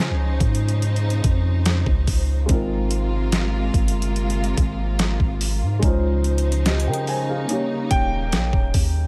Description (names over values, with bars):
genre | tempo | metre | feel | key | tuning
contemporary R&B | 72 BPM | 4/4 | straight | Ab major | A4 = 440 Hz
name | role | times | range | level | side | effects
bright concert grand piano | melody | 0.0-0.4, 7.9-9.1 s | G5 to Ab5 | -30 LUFS | equal | delay
felt-muted upright piano | accompaniment | 0.0-9.1 s | Ab3 to Ab5 | -31 LUFS | equal | none
rich studio string section | sustained chords | 0.0-9.1 s | C3 to C5 | -31 LUFS | equal | sidechain pumping
long sustained 808-style bass | bass | 0.0-9.1 s | Eb1 to Db3 | -24 LUFS | equal | none
detuned 8-bit digital drum machine | drums | 0.4-8.9 s | hi-hat, kick drum, snare drum | -24 LUFS | equal | none
room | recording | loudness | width
studio reverb | none | -21 LUFS | mono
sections
0.0-9.1 A section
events
none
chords
0.0 Dbmaj9; 2.5 Ab69; 5.8 Dbmaj9; 7.5 Eb7